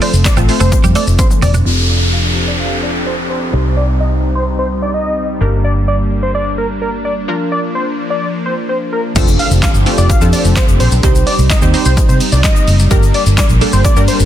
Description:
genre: dance-pop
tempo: 128 BPM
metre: 4/4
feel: straight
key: unclear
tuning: A4 = 436 Hz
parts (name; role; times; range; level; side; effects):
- fat analog lead; melody; 0.0-14.2 s; Bb4 to F5; -20 LUFS; equal; chorus, low-pass filter, tape echo
- analog pluck; accompaniment; 0.0-14.3 s; F3 to C5; -20 LUFS; right 1 dB; chorus, low-pass filter
- soft supersaw; sustained chords; 0.0-14.3 s; F3 to A4; -20 LUFS; equal; sidechain pumping, low-pass filter
- twelve-string electric guitar; riff; 0.0-1.6 s; G3 to D4; -21 LUFS; right 7 dB; analog chorus
- punchy analog drum machine; drums; 0.0-1.6, 9.2-14.3 s; crash cymbal, handclaps, hi-hat, kick drum, shaker, snare drum, toms; -13 LUFS; equal; none
- vintage muted fingered electric bass; bass; 0.1-14.3 s; E1 to C3; -14 LUFS; equal; sidechain pumping
- tube shaker; percussion; 0.1-1.6, 9.2-14.3 s; none; -29 LUFS; left 15 dB; none
- downlifter and impact; sound effects; 1.7-5.4, 9.2-11.0 s; none; -21 LUFS; equal; none
room: light reverb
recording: dense, heavily limited modern master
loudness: -11 LUFS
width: side -11 dB against mid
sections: 0.0-1.7 A section; 1.7-9.2 B section; 9.2-14.3 A section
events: drop 0.0-1.7, 9.2-14.3; drum fill 1.2-1.7; filter sweep 1.7-9.2; break 7.3-9.2; impact 9.2-11.0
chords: 0.0 F; 1.7 F6; 3.5 Cm; 5.4 Gm; 7.3 Bb; 9.2 F6; 11.0 Cm; 12.9 Gm

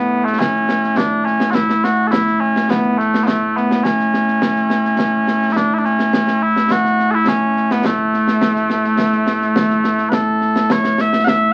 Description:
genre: scottish traditional, Scottish pipe music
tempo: 105 BPM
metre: 4/4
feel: straight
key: A major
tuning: A4 = 436 Hz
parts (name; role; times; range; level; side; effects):
- mellow small bagpipes; melody; 0.0-11.5 s; A2 to F#5; -17 LUFS; equal; none
- concert snare drum and concert bass drum; drums; 0.3-11.4 s; none; -23 LUFS; equal; none
room: wet studio ambience, RT60 0.5 s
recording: very old 78 rpm record, vinyl crackle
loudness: -16 LUFS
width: mono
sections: 0.0-10.1 A section; 10.1-11.5 B section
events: none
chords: none

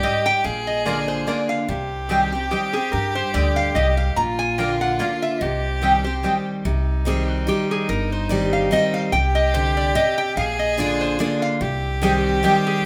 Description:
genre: bluegrass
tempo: 145 BPM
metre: 3/4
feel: swing 55% on 8ths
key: C minor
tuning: A4 = 440 Hz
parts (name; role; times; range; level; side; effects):
- lap resonator guitar; melody; 0.0-12.8 s; F#4 to Bb5; -26 LUFS; equal; none
- clear fiddle; second line; 0.0-12.9 s; Eb4 to Ab4; -28 LUFS; equal; none
- picked steel-string acoustic guitar; accompaniment; 0.0-12.8 s; G2 to G4; -27 LUFS; equal; none
- mandolin; stabs; 0.0-6.3, 12.0-12.5 s; Bb3 to Bb5; -26 LUFS; equal; none
- upright bass; bass; 0.0-12.4 s; G1 to G2; -27 LUFS; equal; none
room: moderate large studio reverb, RT60 1.2 s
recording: none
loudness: -21 LUFS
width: mono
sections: 0.0-6.7 A section; 6.7-12.9 A section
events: none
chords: 0.4 Bb; 1.7 Cm; 4.2 Bb; 5.4 Cm; 10.4 Bb; 11.6 Cm

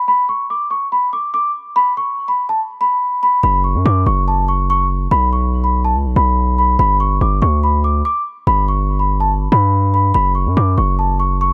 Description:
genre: hip hop, trap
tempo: 143 BPM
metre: 4/4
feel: half-time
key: F# phrygian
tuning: A4 = 441 Hz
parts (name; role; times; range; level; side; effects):
- large celesta; melody; 0.0-11.5 s; A5 to D6; -18 LUFS; equal; low-pass filter
- distorted 808-style bass; bass; 3.4-11.5 s; F#1 to G2; -18 LUFS; equal; distortion
room: light reverb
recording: none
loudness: -16 LUFS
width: mono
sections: 0.0-3.4 A section; 3.4-11.5 B section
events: none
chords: 0.0 N.C.; 3.4 F#5; 5.1 N.C.; 6.8 G; 10.1 F#5

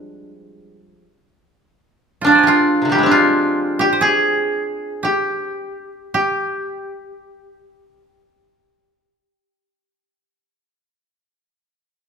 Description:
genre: japanese traditional, Japanese chamber music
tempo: 53-84 BPM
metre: 4/4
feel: rubato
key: G in sen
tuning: A4 = 440 Hz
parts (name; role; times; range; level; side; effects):
- koto; melody; 0.0-10.4 s; C3 to Ab4; -16 LUFS; equal; none
- koto; second line; 0.0-10.4 s; D4 to G5; -20 LUFS; right 4 dB; none
room: moderate recital hall reverb, RT60 1.4 s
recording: minimal, uncompressed stereo recording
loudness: -14 LUFS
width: side -6 dB against mid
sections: 0.0-6.1 A section; 6.1-10.5 B section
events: slowing down 0.0-6.1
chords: none

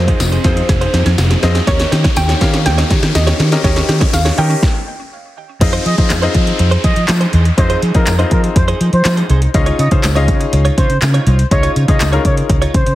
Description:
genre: dance-pop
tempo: 122 BPM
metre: 4/4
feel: straight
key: F minor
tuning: A4 = 440 Hz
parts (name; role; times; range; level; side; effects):
- soft round pluck; melody; 0.0-5.3 s; C5 to G5; -23 LUFS; right 2 dB; chorus, low-pass filter, ping-pong delay
- clear concert grand piano; accompaniment; 0.0-12.7 s; C4 to F5; -20 LUFS; left 4 dB; sidechain pumping, low-pass filter
- supersaw chords; sustained chords; 0.0-4.6 s; Eb3 to Ab4; -26 LUFS; right 1 dB; none
- fingered electric bass; bass; 0.0-12.9 s; F1 to F3; -14 LUFS; equal; sidechain pumping
- riser and downlifter; sound effects; 0.0-9.5 s; none; -25 LUFS; left 2 dB; none
- mallet-like synth pluck; arpeggios; 0.1-4.6 s; Eb3 to Ab6; -28 LUFS; right 3 dB; none
- direct-recorded clean electric guitar; riff; 0.1-12.9 s; Eb4 to Db5; -23 LUFS; right 4 dB; analog chorus, low-pass filter
- deep house drum kit; drums; 0.1-12.9 s; crash cymbal, handclaps, hi-hat, kick drum, snare drum; -15 LUFS; equal; overdrive
- tambourine; percussion; 0.2-12.1 s; none; -28 LUFS; left 8 dB; none
- expressive portamento lead; melody; 5.9-12.9 s; Bb4 to Eb5; -21 LUFS; equal; chorus, ping-pong delay
room: little or no reverb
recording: heavily compressed radio sound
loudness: -11 LUFS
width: side -15 dB against mid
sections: 0.0-5.6 A section; 5.6-12.9 B section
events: build-up 0.0-5.6; drum fill 0.0-4.6; riser 0.0-5.6; stop 4.6-5.6; drop 5.6-12.9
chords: 0.0 Fm7; 1.7 Eb7; 5.6 Fm7; 9.5 Dbadd9

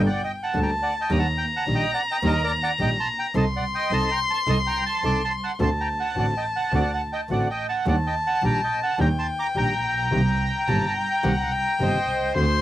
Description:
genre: tango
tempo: 107 BPM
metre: 4/4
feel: rubato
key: unclear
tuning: A4 = 439 Hz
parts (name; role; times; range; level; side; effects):
- bandoneon; melody; 0.0-12.6 s; Bb4 to D6; -26 LUFS; right 2 dB; cassette tape
- dark violin; second line; 0.0-12.6 s; F#5 to C6; -26 LUFS; left 2 dB; none
- nylon-string guitar; accompaniment; 0.0-12.4 s; C3 to A4; -26 LUFS; left 2 dB; none
- warm double bass; bass; 0.0-12.6 s; G1 to Eb2; -26 LUFS; right 2 dB; none
room: moderate booth ambience, RT60 0.2 s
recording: home recording on cassette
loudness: -21 LUFS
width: side -14 dB against mid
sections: 0.0-12.6 A section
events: none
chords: 0.0 Gmadd9; 1.1 Ebmaj7; 3.4 Adim/C; 5.6 D7; 7.9 Ebmaj7; 10.1 Cm7

